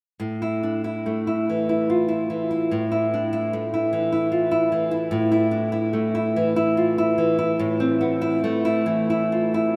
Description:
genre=romantic piece for solo classical guitar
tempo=73 BPM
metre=3/4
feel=uneven beats, rubato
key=unclear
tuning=A4 = 440 Hz
part: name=nylon-string guitar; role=solo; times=0.2-9.8 s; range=A2 to F4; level=-22 LUFS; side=equal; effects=none
room=wet huge ambient reverb, RT60 8.1 s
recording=in a vast, echoing space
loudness=-22 LUFS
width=mono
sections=0.2-9.8 A section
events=none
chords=0.2 Dmadd9/A; 5.1 Am

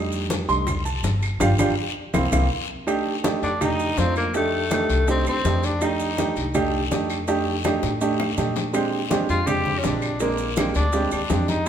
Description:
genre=Afro-Cuban jazz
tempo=164 BPM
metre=4/4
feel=straight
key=F mixolydian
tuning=A4 = 440 Hz
part: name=warm baby grand piano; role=accompaniment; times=0.0-11.7 s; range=G3 to C6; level=-24 LUFS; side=right 3 dB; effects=none
part: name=upright bass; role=bass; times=0.0-11.7 s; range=G1 to Bb2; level=-26 LUFS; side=left 1 dB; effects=none
part: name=congas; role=percussion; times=0.1-11.7 s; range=none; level=-30 LUFS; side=left 2 dB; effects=none
part: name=maracas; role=percussion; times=0.1-11.7 s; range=none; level=-39 LUFS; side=right 6 dB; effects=none
part: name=bongos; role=percussion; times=0.3-11.7 s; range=none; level=-34 LUFS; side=left 5 dB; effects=none
part: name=guiro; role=percussion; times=0.3-11.7 s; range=none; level=-34 LUFS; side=left 6 dB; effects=none
part: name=claves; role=percussion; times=0.7-11.3 s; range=none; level=-36 LUFS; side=right 4 dB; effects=none
part: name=breathy tenor saxophone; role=melody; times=3.4-6.6, 9.3-11.7 s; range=A3 to G4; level=-25 LUFS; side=left 1 dB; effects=none
room=wet large studio reverb, RT60 1.5 s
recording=band playing live in one room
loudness=-20 LUFS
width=side -9 dB against mid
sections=0.0-2.9 A section; 2.9-11.7 B section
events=grand piano solo 0.0-2.9; band accent 1.4-2.9; drum fill 2.1-2.9, 7.6-8.7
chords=0.0 F13; 1.4 G5; 2.1 C7; 2.9 F13; 8.7 Bb13

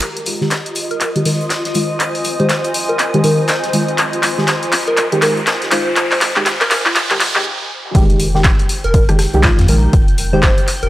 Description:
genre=deep house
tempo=121 BPM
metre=4/4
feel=swing 60% on 16ths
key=F minor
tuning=A4 = 437 Hz
part: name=deep mellow chord stab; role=stabs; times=0.0-10.4 s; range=Eb3 to Bb4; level=-18 LUFS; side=equal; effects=chorus, cassette tape, sidechain pumping, analog delay
part: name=huge arena drum kit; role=drums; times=0.0-10.8 s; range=hi-hat, snare drum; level=-29 LUFS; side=left 1 dB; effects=high-pass filter on hats, high-pass filter on snare, high-pass filter on room
part: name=punchy analog drum machine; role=drums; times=0.0-10.9 s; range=handclaps, hi-hat, rim click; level=-18 LUFS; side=equal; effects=none
part: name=riser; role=sound effects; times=0.0-7.5 s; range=none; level=-25 LUFS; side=right 1 dB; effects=none
part: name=granular cloud pad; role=texture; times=0.0-7.5 s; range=F4 to Bb5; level=-24 LUFS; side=equal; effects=built-in reverb, sidechain pumping
part: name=soft string machine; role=texture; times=0.0-10.9 s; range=Eb5 to G6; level=-28 LUFS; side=equal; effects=ensemble chorus
part: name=plucky unison lead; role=melody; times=0.9-10.9 s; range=F4 to C5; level=-21 LUFS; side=equal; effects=cassette tape, analog delay
part: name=warm sub bass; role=bass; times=7.9-10.9 s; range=F1 to F2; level=-16 LUFS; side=equal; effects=sidechain pumping
part: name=electronic kick drum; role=drums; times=7.9-10.5 s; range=none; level=-13 LUFS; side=equal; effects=none
room=light reverb, digital ambience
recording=dry, gritty hardware recording, high-pass filter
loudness=-12 LUFS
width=side -16 dB against mid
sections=0.0-7.9 A section; 7.9-10.9 B section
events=build-up 0.0-7.9; drum fill 0.0-7.5; riser 0.0-7.5; filter sweep on synth stab 0.0-7.9; filter sweep on digital synth lead 0.0-7.9; stop 7.5-7.9; drop 7.9-10.9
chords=0.0 Fm9

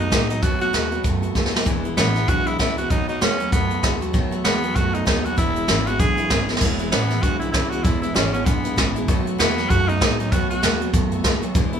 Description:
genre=rockabilly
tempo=194 BPM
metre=4/4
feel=swing 59% on 8ths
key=E major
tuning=A4 = 438 Hz
part: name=raspy tenor saxophone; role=melody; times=0.0-10.9 s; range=B3 to G#4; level=-24 LUFS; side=equal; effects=none
part: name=picked steel-string acoustic guitar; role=accompaniment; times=0.0-11.8 s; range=E2 to F#4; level=-28 LUFS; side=left 5 dB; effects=none
part: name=electric guitar through a small old amp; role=riff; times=0.0-11.8 s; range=E2 to A3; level=-27 LUFS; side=right 4 dB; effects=none
part: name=upright bass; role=bass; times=0.0-11.8 s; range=E1 to A2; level=-26 LUFS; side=right 1 dB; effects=none
part: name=jazz brush drum kit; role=drums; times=0.1-11.8 s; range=crash cymbal, hi-hat, kick drum, snare drum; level=-21 LUFS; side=equal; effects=none
room=light reverb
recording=band playing live in one room, studio reverb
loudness=-18 LUFS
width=side -8 dB against mid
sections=0.0-6.6 A section; 6.6-11.8 A section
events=drum fill 1.4-1.7, 6.5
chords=0.0 B7; 1.7 E; 2.9 B7; 5.4 E; 9.1 B7

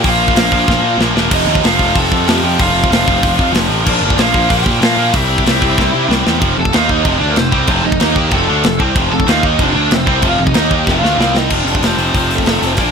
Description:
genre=punk rock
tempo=188 BPM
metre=4/4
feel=straight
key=F mixolydian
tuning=A4 = 440 Hz
part: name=biting lead guitar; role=melody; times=0.0-12.9 s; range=A3 to A5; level=-17 LUFS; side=equal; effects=overdrive
part: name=tight distorted guitar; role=riff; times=0.0-12.9 s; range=F2 to Eb4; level=-15 LUFS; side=equal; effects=distortion
part: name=fuzz picked electric bass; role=bass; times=0.0-12.9 s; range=E1 to C3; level=-18 LUFS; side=equal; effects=overdrive
part: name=tight metal drum kit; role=drums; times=0.0-12.9 s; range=crash cymbal, hi-hat, kick drum, snare drum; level=-16 LUFS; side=equal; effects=none
room=little or no reverb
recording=none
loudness=-10 LUFS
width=side -6 dB against mid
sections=0.0-6.4 A section; 6.4-11.5 B section; 11.5-12.9 C section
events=drum fill 0.7-1.3, 5.8-6.4, 10.9-11.5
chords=0.0 Bb5; 1.3 F; 3.9 Bb; 5.1 C; 6.4 F; 6.7 Eb5; 7.1 F; 8.0 Eb5; 8.3 F; 9.3 Eb5; 9.6 F; 10.6 Eb5; 10.9 F; 11.2 C5; 11.5 F

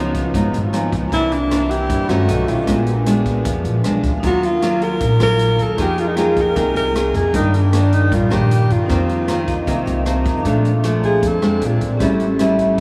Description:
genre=bossa nova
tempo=154 BPM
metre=4/4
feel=straight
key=Bb major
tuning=A4 = 435 Hz
part: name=nylon-string guitar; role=accompaniment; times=0.0-12.8 s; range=F2 to Ab4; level=-22 LUFS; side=equal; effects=none
part: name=vibraphone with medium hard mallets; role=accompaniment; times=0.0-12.8 s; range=Bb3 to Bb5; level=-28 LUFS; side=equal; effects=none
part: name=upright bass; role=bass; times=0.0-12.7 s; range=Ab1 to G2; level=-22 LUFS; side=equal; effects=none
part: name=swinging big-band drum kit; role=drums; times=0.1-12.7 s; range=hi-hat, kick drum, rim click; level=-30 LUFS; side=equal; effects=none
part: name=breathy alto saxophone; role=melody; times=1.1-11.8 s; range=D4 to Bb4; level=-23 LUFS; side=equal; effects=none
room=moderate huge ambient reverb, RT60 7.8 s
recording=in a vast, echoing space, small room ambience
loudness=-17 LUFS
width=mono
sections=0.0-10.4 A section; 10.4-12.8 B section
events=vibraphone fill 0.3-1.1, 3.6-4.2, 9.3-10.4; alto saxophone solo 10.4-12.8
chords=0.0 Db9; 1.1 C9; 2.3 B9; 2.7 Bb7b9; 4.2 Ebmadd9; 5.8 Fm11; 7.3 Ebmaj7/G; 8.9 F7sus4; 10.4 Bbmaj7; 11.6 Bb9; 12.0 A7

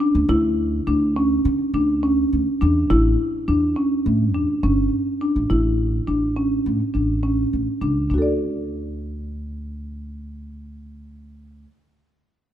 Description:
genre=contemporary instrumental, chamber music in an uneven meter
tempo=207 BPM (eighths)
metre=9/8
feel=straight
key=D major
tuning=A4 = 440 Hz
part: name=marimba with medium mallets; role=arpeggios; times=0.0-11.8 s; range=C#4 to D5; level=-20 LUFS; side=equal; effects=none
part: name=upright bass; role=bass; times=0.1-11.6 s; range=G1 to D3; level=-23 LUFS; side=equal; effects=none
room=light reverb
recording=close, detailed microphones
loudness=-18 LUFS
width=side -11 dB against mid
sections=0.0-8.1 A section; 8.1-10.7 B section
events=none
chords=0.0 D5; 2.9 A; 8.1 D

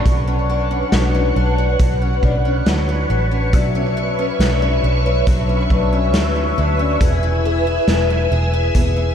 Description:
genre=dream pop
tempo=69 BPM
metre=4/4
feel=straight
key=B dorian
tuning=A4 = 442 Hz
part: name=ensemble organ-string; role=sustained chords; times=0.0-9.1 s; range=B4 to E6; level=-21 LUFS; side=left 1 dB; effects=phaser, ensemble chorus
part: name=picked twelve-string acoustic guitar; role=arpeggios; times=0.0-9.1 s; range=F#3 to A4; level=-23 LUFS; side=left 3 dB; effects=wide subtle chorus, ping-pong delay
part: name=vintage muted picked electric bass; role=bass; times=0.1-9.1 s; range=E1 to D2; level=-18 LUFS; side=equal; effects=none
part: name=raw garage drum kit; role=drums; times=0.1-9.0 s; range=hi-hat, kick drum, snare drum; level=-20 LUFS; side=equal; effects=none
room=light reverb, studio ambience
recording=none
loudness=-15 LUFS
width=side -8 dB against mid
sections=0.1-9.1 A section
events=none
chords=0.1 Bmadd9; 7.0 E

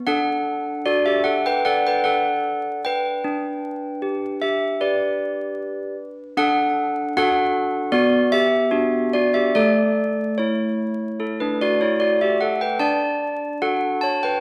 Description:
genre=classical, tune for handbells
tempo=76 BPM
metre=4/4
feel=straight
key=D major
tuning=A4 = 440 Hz
part: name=handbells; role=solo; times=0.1-14.4 s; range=A3 to A5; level=-21 LUFS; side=equal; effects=none
room=wet recital hall reverb, RT60 1.4 s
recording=recorded in a church or concert hall, vinyl crackle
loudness=-21 LUFS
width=mono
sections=0.1-14.4 A section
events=none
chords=0.1 D; 3.2 G/D; 6.4 D; 7.9 Bm; 9.6 A; 12.8 D

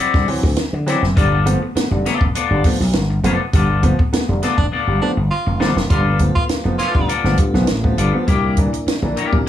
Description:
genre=funk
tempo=101 BPM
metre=4/4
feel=straight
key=unclear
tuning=A4 = 441 Hz
part: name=clean electric guitar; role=accompaniment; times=0.0-9.5 s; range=Bb3 to D5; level=-22 LUFS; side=left 7 dB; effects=plate reverb
part: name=warm upright piano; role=stabs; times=0.0-9.4 s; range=G2 to D4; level=-22 LUFS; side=right 1 dB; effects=plate reverb
part: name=slap bass with an envelope filter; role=bass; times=0.1-9.5 s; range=F1 to D3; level=-18 LUFS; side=equal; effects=none
part: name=compact cocktail drum kit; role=drums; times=0.1-9.5 s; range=hi-hat, kick drum, snare drum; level=-19 LUFS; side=equal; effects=none
part: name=clear baritone saxophone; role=second line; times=4.6-7.2 s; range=D4 to F4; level=-24 LUFS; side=right 4 dB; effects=plate reverb
part: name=mellow tonewheel organ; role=sustained chords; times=5.9-9.5 s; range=A3 to F4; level=-27 LUFS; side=equal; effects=slow rotary speaker, plate reverb
room=moderate club reverb, RT60 0.5 s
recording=small room ambience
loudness=-15 LUFS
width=side -11 dB against mid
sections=0.0-5.9 A section; 5.9-9.5 B section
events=band accent 3.5-5.9; drum fill 4.7-5.9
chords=0.0 D9; 1.2 G9; 8.3 C9

